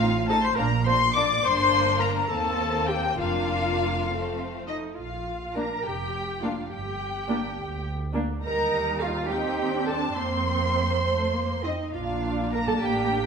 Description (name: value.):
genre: quick classical-period movement for string orchestra.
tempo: 69 BPM (dotted quarters).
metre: 6/8.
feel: straight.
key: Bb major.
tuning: A4 = 441 Hz.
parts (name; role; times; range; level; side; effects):
muted chamber violin section; melody; 0.0-13.3 s; Eb5 to D6; -28 LUFS; left 4 dB; none.
muted chamber violin section; second line; 0.0-13.3 s; A3 to C6; -32 LUFS; left 2 dB; none.
muted chamber viola section; accompaniment; 0.0-13.3 s; G3 to D5; -29 LUFS; left 1 dB; none.
muted chamber cello section; bass; 0.0-13.3 s; Eb2 to C5; -30 LUFS; right 4 dB; none.
muted studio double bass section; bass; 0.0-13.3 s; F1 to F2; -32 LUFS; right 4 dB; none.
room: wet recital hall reverb, RT60 1.3 s.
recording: minimal, uncompressed stereo recording.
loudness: -23 LUFS.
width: side -6 dB against mid.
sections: 0.0-5.0 A section; 5.0-13.3 B section.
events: none.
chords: 0.0 F7/A; 0.6 Bb; 1.4 Gm; 2.3 Cm7/Eb; 3.2 Bb/F; 4.1 F; 5.0 Bb; 6.7 Gm; 8.4 Eb; 9.3 Cm/Eb; 10.2 Fsus4; 11.1 F; 11.9 Bb.